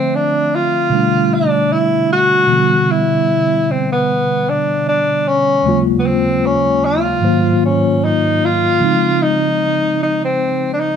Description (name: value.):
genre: R&B.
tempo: 76 BPM.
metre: 4/4.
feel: swing 56% on 16ths.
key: unclear.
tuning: A4 = 440 Hz.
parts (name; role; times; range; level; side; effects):
warm tenor saxophone; melody; 0.0-11.0 s; B3 to Gb4; -15 LUFS; equal; slapback echo.
mellow tine electric piano; accompaniment; 0.0-11.0 s; Eb2 to E5; -16 LUFS; equal; medium stereo tremolo.
room: moderate echo chamber reverb, RT60 2.0 s, small room ambience.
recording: dark, warm production.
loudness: -12 LUFS.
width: side -8 dB against mid.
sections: 0.0-11.0 A section.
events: none.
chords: 0.0 Dm9; 0.9 G; 2.5 Em7/B; 5.6 Ebm11; 7.2 Ab13; 8.8 Dbmaj9.